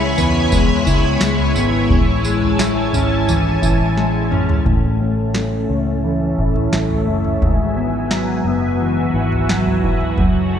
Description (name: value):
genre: dream pop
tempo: 87 BPM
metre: 4/4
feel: straight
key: A major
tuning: A4 = 441 Hz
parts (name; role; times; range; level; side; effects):
- string machine, full ensemble; sustained chords; 0.0-10.6 s; C#4 to B5; -22 LUFS; right 1 dB; ensemble chorus, low-pass filter
- electric guitar at the edge of break-up; arpeggios; 0.0-10.6 s; F#2 to E4; -19 LUFS; left 2 dB; analog chorus, low-pass filter, ping-pong delay
- vintage muted fingered electric bass; bass; 0.0-10.6 s; F#1 to E2; -21 LUFS; equal; none
- glockenspiel with hard plastic mallets; texture; 0.0-0.7 s; B5; -35 LUFS; equal; none
- booming analog drum machine; drums; 0.2-10.4 s; kick drum, snare drum, tambourine, toms; -20 LUFS; equal; gated reverb
room: light reverb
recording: bright 1980s-style digital production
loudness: -15 LUFS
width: side -8 dB against mid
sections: 0.0-4.7 A section; 4.7-10.6 B section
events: drum fill 4.0-4.7; filter sweep 4.7-10.6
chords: 0.0 C#m7; 1.9 Amaj7; 4.7 A; 7.4 Eadd9